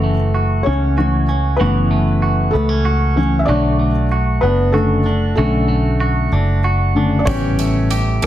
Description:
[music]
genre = six-eight pop ballad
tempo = 64 BPM (dotted quarters)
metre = 6/8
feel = straight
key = B minor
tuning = A4 = 439 Hz
[part]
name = felt-muted upright piano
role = accompaniment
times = 0.0-8.3 s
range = C#3 to E5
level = -18 LUFS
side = left 2 dB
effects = none
[part]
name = clean electric guitar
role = arpeggios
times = 0.0-8.3 s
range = E3 to G4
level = -21 LUFS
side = right 2 dB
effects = none
[part]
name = vintage muted fingered electric bass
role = bass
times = 0.0-8.3 s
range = F#1 to E2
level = -17 LUFS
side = equal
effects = none
[part]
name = soft-mallet drum kit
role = drums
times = 7.3-8.3 s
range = hi-hat, kick drum, rim click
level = -22 LUFS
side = right 1 dB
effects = none
[sound]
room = light reverb, small room ambience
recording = dense, heavily limited modern master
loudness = -14 LUFS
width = side -12 dB against mid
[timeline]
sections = 0.0-8.3 A section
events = felt piano solo 0.0-8.3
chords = 0.0 F#m7; 3.5 Bm7; 7.3 A7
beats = 0.66 | 1.60 2.54 | 3.48 4.43 | 5.37 6.32 | 7.28 8.23

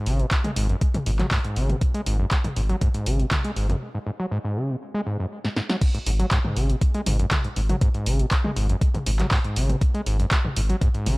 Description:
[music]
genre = acid house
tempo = 120 BPM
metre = 4/4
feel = straight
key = G# minor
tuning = A4 = 441 Hz
[part]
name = overdriven acid bass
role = riff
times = 0.0-11.2 s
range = F#2 to G#3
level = -27 LUFS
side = equal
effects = distortion, cassette tape, analog delay
[part]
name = saturated sub bass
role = bass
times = 0.1-11.2 s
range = G#1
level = -23 LUFS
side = equal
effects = sidechain pumping
[part]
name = punchy analog drum machine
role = drums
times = 0.1-11.2 s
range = crash cymbal, handclaps, hi-hat, snare drum, toms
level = -28 LUFS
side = equal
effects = none
[part]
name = electronic kick drum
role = drums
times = 0.3-10.9 s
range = none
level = -21 LUFS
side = equal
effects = none
[sound]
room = digital ambience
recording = none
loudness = -21 LUFS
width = side -24 dB against mid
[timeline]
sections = 0.0-5.8 A section; 5.8-11.2 B section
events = break 3.8-5.8; drum fill 5.4-5.8; drop 5.8-11.2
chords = none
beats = 0.32 0.81 1.31 | 1.81 2.31 2.81 3.31 | 3.81 4.32 4.82 5.32 | 5.82 6.32 6.82 7.32 | 7.82 8.31 8.81 9.31 | 9.81 10.31 10.81

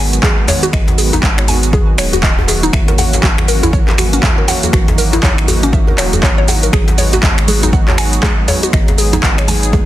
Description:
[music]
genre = afro house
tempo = 120 BPM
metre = 4/4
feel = swing 60% on 16ths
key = G# minor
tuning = A4 = 440 Hz
[part]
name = warm analog pad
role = sustained chords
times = 0.0-9.9 s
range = D#3 to G#4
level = -20 LUFS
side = right 2 dB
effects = chorus, tremolo, sidechain pumping
[part]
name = mallet-like synth pluck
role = arpeggios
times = 0.0-9.9 s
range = C#4 to G#5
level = -19 LUFS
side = left 1 dB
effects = chorus, sidechain pumping, tape echo
[part]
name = warm sub bass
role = bass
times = 0.0-9.9 s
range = D#1 to G#1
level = -16 LUFS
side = equal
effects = sidechain pumping
[part]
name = impact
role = sound effects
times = 0.0-0.7 s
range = none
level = barely audible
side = none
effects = none
[part]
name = deep house drum kit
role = drums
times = 0.1-9.9 s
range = finger snaps, handclaps, hi-hat, shaker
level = -17 LUFS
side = right 1 dB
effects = overdrive, studio reverb
[part]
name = electronic kick drum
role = drums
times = 0.2-9.9 s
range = none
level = -14 LUFS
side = equal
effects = overdrive, studio reverb
[part]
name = djembe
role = percussion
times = 0.2-9.9 s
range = none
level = -22 LUFS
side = left 1 dB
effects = none
[part]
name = congas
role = percussion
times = 7.5-9.9 s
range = none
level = -22 LUFS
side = right 2 dB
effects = none
[sound]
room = digital ambience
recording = dense, heavily limited modern master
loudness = -10 LUFS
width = side -14 dB against mid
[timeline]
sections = 0.0-9.9 A section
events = impact 0.0-0.7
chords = 0.0 G#m7; 2.7 F#7/G#; 6.7 G#m7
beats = 0.23 | 0.73 1.23 1.73 2.23 | 2.73 3.23 3.73 4.23 | 4.73 5.23 5.73 6.23 | 6.73 7.23 7.73 8.23 | 8.73 9.23 9.73

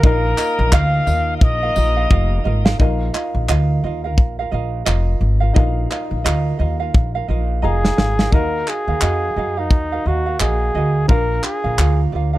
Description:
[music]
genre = acoustic pop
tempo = 87 BPM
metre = 4/4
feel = swing 60% on 16ths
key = unclear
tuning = A4 = 440 Hz
[part]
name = clear flugelhorn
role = melody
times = 0.0-2.5, 7.6-12.4 s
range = Eb4 to F5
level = -21 LUFS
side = left 1 dB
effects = none
[part]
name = dark upright piano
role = accompaniment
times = 0.0-12.4 s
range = D4 to Bb5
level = -30 LUFS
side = left 7 dB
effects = none
[part]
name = ukulele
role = accompaniment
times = 0.0-12.4 s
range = F4 to F5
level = -25 LUFS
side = right 7 dB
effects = none
[part]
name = bright tonewheel organ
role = sustained chords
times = 0.0-2.8 s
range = Bb3 to Eb4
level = -30 LUFS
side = equal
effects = overdrive, slow rotary speaker
[part]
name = upright bass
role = bass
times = 0.0-12.4 s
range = F1 to Gb2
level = -19 LUFS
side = equal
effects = none
[part]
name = modern studio drum kit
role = drums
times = 0.0-12.0 s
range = handclaps, kick drum, snare drum, tambourine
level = -16 LUFS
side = equal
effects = none
[sound]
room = studio reverb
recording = dry, close 1970s-style studio recording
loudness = -15 LUFS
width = side -16 dB against mid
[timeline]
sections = 0.0-2.8 A section; 2.8-8.3 B section; 8.3-12.4 C section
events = drum fill 2.1-2.8, 6.9-8.3; upright piano fill 7.3-8.3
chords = 0.0 Bbsus4; 8.3 Ebmadd9; 11.1 Bb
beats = | 0.04 0.73 1.42 2.11 | 2.80 3.49 4.18 4.87 | 5.56 6.25 6.94 7.63 | 8.33 9.02 9.71 10.40 | 11.09 11.78

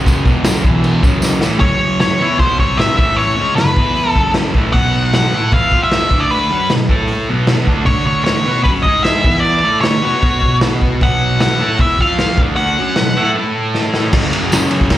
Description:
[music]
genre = garage rock duo or trio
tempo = 153 BPM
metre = 4/4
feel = straight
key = F# minor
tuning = A4 = 440 Hz
[part]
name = fuzz guitar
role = riff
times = 0.0-15.0 s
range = E2 to B4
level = -16 LUFS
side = equal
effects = distortion
[part]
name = raw garage drum kit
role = drums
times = 0.1-15.0 s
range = crash cymbal, hi-hat, kick drum, ride cymbal, snare drum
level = -16 LUFS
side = equal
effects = none
[part]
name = tambourine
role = percussion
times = 0.1-1.5, 14.5-14.6 s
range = none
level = -27 LUFS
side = left 1 dB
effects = none
[part]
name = octave-fuzz lead guitar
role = melody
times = 1.6-13.3 s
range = B4 to F#5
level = -16 LUFS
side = left 1 dB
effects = distortion
[sound]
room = light reverb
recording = live gig heard through the venue's PA, club reverb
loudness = -12 LUFS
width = side -13 dB against mid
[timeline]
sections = 0.0-1.6 A section; 1.6-14.1 B section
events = drum fill 1.2-1.6, 13.7-14.1; break 13.3-14.1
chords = 0.0 F#5; 0.6 E5; 1.0 F#m; 1.6 F#5; 2.6 C5; 3.0 A5; 3.4 F#5; 3.8 E5; 4.2 F#m; 4.7 B5; 5.7 F5; 6.1 D5; 6.5 B5; 6.9 A5; 7.3 B5; 7.9 D5; 8.8 G#5; 9.2 E5; 9.6 D5; 10.2 B5; 12.0 F5; 12.4 D5; 12.8 B5; 13.3 A5; 14.1 F#5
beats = | 0.06 0.45 0.84 1.23 | 1.62 2.00 2.40 2.79 | 3.18 3.57 3.96 4.35 | 4.74 5.13 5.52 5.92 | 6.31 6.70 7.09 7.48 | 7.87 8.26 8.65 9.05 | 9.44 9.83 10.22 10.61 | 11.00 11.39 11.79 12.18 | 12.57 12.96 13.35 13.74 | 14.13 14.52 14.91

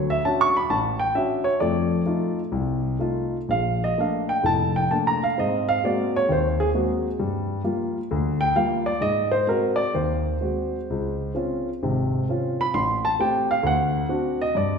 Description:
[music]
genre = solo jazz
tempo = 131 BPM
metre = 4/4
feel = swing 68% on 8ths, rubato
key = Bb major from 3.5 s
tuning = A4 = 440 Hz
[part]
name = dark grand piano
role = solo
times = 0.0-14.8 s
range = F1 to C#6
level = -21 LUFS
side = equal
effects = none
[sound]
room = wet scoring stage reverb, RT60 1.7 s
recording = recorded in a church or concert hall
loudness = -21 LUFS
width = side -6 dB against mid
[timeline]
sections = 0.0-3.5 A section; 3.5-14.8 A section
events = grand piano solo 0.0-14.8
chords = 0.0 Dmaj7; 1.6 F7; 3.5 Bbmaj7; 5.4 Ab9; 7.2 Gm7; 9.0 Ab7; 10.9 Dbmaj7; 12.7 Am7; 13.6 D7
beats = 0.23 0.69 1.14 | 1.59 2.05 2.52 3.01 | 3.51 3.98 4.44 4.90 | 5.37 5.83 6.29 6.74 | 7.20 7.65 8.11 8.56 | 9.02 9.47 9.93 10.41 | 10.88 11.35 11.82 12.28 | 12.74 13.19 13.64 14.10 | 14.54

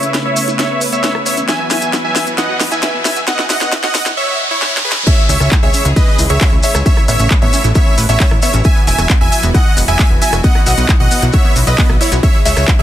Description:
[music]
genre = uplifting trance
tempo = 134 BPM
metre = 4/4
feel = straight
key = C# minor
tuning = A4 = 440 Hz
[part]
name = supersaw chords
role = melody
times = 0.0-12.8 s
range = E4 to G#5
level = -17 LUFS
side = right 1 dB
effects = sidechain pumping, low-pass filter, dub echo
[part]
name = clear studio string section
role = sustained chords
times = 0.0-12.8 s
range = B2 to B4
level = -24 LUFS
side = left 1 dB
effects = sidechain pumping
[part]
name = tight sequenced synth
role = arpeggios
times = 0.0-12.8 s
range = B3 to E5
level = -25 LUFS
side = right 1 dB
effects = chorus, phaser, sidechain pumping, ping-pong delay
[part]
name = techno drum kit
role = drums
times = 0.0-12.8 s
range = crash cymbal, handclaps, hi-hat, ride cymbal, rim click, snare drum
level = -19 LUFS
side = equal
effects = none
[part]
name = maracas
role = percussion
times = 0.0-12.8 s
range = none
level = -23 LUFS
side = left 3 dB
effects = none
[part]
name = riser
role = sound effects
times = 1.2-5.1 s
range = none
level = -23 LUFS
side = equal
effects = none
[part]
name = dark baby grand piano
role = second line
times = 5.1-12.8 s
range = C#5 to G#5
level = -25 LUFS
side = equal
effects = sidechain pumping, ping-pong delay
[part]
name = electronic kick drum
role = drums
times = 5.1-12.8 s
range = none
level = -12 LUFS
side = equal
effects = none
[part]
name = plucky analog bass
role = bass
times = 5.3-12.8 s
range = E1 to C#2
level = -15 LUFS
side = equal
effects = sidechain pumping
[sound]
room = little or no reverb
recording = dense, heavily limited modern master, high-pass filter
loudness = -10 LUFS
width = side -12 dB against mid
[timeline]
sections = 0.0-5.1 A section; 5.1-12.8 B section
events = build-up 0.0-5.1; drum fill 0.0-4.2, 4.6-5.1; filter sweep on supersaw synth 0.0-5.1; filter sweep on synth arpeggio sound 0.0-5.1; filter sweep 0.0-5.1; drop 5.1-12.8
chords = 0.0 Aadd9; 1.5 Esus2; 5.1 C#m; 6.9 Aadd9; 8.6 Esus2; 10.4 Bsus4; 12.2 C#m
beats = 0.14 0.59 1.04 | 1.49 1.93 2.38 2.83 | 3.28 3.72 4.17 4.62 | 5.07 5.51 5.96 6.41 | 6.86 7.31 7.75 8.20 | 8.65 9.10 9.54 9.99 | 10.44 10.89 11.34 11.78 | 12.23 12.68

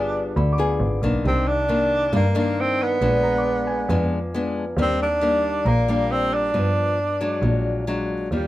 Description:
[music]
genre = bossa nova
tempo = 136 BPM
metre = 4/4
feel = straight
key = unclear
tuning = A4 = 439 Hz
[part]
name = breathy tenor saxophone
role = melody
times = 0.0-8.5 s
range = G3 to D4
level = -22 LUFS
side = right 1 dB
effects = plate reverb
[part]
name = nylon-string guitar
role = accompaniment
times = 0.0-8.5 s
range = G2 to Ab4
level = -24 LUFS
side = left 2 dB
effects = none
[part]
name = bright double bass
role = bass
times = 0.0-8.5 s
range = G1 to G2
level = -24 LUFS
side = right 1 dB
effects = none
[part]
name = clear concert grand piano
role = accompaniment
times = 0.4-6.6 s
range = Ab5 to D6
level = -34 LUFS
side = right 1 dB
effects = none
[sound]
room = light reverb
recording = none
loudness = -19 LUFS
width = side -15 dB against mid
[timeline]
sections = 0.0-8.3 A section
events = none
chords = 0.0 G7b9; 1.2 Cm9; 3.0 Bb7b9; 4.8 Ebmaj7; 6.5 G7; 7.4 Bbaug7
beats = 0.36 0.80 | 1.24 1.69 2.13 2.57 | 3.01 3.45 3.89 4.34 | 4.78 5.22 5.66 6.10 | 6.54 6.99 7.43 7.87 | 8.31

